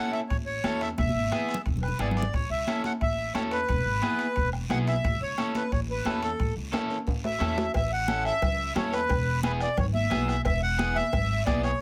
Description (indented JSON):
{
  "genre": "latin, cumbia",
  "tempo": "177 BPM",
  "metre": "4/4",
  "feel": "straight",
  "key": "A major",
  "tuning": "A4 = 440 Hz",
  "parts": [
    { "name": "accordion", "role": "melody", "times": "0.0-11.8 s", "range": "A4 to F#5", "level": "-32 LUFS", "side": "equal", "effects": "none" },
    { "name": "electric guitar at the edge of break-up", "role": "accompaniment", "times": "0.0-11.7 s", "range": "B3 to A4", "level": "-35 LUFS", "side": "equal", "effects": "none" },
    { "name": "guiro", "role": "percussion", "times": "0.1-11.8 s", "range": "none", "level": "-47 LUFS", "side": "equal", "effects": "none" },
    { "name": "timbales and cowbell", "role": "percussion", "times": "0.1-11.3 s", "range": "none", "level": "-39 LUFS", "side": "equal", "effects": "none" },
    { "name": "upright bass", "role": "bass", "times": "0.3-11.7 s", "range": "E1 to E2", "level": "-33 LUFS", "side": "equal", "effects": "none" },
    { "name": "bombo", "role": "percussion", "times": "0.3-11.8 s", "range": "none", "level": "-33 LUFS", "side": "equal", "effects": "none" },
    { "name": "congas", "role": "percussion", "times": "0.6-11.6 s", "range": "none", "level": "-36 LUFS", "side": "equal", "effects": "none" }
  ],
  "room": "light reverb",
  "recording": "close, detailed microphones",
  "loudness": "-27 LUFS",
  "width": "mono",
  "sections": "0.0-7.8 A section; 7.8-11.8 B section",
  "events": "drum fill 1.0-2.3, 6.7-7.8",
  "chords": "0.0 A; 1.0 E; 2.3 A; 3.7 E; 5.0 A; 9.1 E"
}